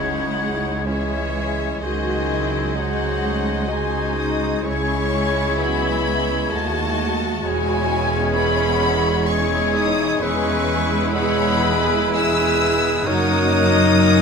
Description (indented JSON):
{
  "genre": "classical",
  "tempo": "64 BPM",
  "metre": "3/4",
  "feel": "rubato",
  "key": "C# minor",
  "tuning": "A4 = 440 Hz",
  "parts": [
    { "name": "warm symphonic violin section", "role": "melody", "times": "0.0-14.2 s", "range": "D#5 to E6", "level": "-26 LUFS", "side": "left 2 dB", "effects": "none" },
    { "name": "clear clarinet", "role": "second line", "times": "0.0-14.2 s", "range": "E4 to A#4", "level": "-29 LUFS", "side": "right 3 dB", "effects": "none" },
    { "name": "clear oboe", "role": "second line", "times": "0.0-14.2 s", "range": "B4 to C#5", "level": "-30 LUFS", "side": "right 2 dB", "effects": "none" },
    { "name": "silver concert flute", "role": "second line", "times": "0.0-14.2 s", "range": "E6 to G#6", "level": "-29 LUFS", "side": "left 5 dB", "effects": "none" },
    { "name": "warm symphonic violin section", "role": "second line", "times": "0.0-14.2 s", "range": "D#4 to E5", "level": "-29 LUFS", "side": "left 3 dB", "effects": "none" },
    { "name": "mellow bassoon", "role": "accompaniment", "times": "0.0-14.2 s", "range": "F#3 to G#3", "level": "-26 LUFS", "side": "equal", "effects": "none" },
    { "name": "rich symphonic viola section", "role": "accompaniment", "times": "0.0-14.2 s", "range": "F#3 to F#4", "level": "-27 LUFS", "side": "right 2 dB", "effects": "none" },
    { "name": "mellow French horn section", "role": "sustained chords", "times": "0.0-14.2 s", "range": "D#3 to E4", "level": "-26 LUFS", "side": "left 6 dB", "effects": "none" },
    { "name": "dark symphonic double bass section", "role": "bass", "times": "0.0-14.2 s", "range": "E1 to D#2", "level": "-27 LUFS", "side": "right 4 dB", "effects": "none" },
    { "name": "rich symphonic cello section", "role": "bass", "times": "0.0-14.2 s", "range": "C#2 to F#2", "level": "-26 LUFS", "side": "right 2 dB", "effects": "none" }
  ],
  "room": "moderate scoring stage reverb, RT60 1.7 s",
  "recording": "none",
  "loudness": "-17 LUFS",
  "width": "side -5 dB against mid",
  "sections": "0.0-14.2 A section",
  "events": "none",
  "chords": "0.0 C#m; 1.8 G#7/C#; 4.6 C#m; 7.4 C#m/E; 10.2 E; 13.1 F#"
}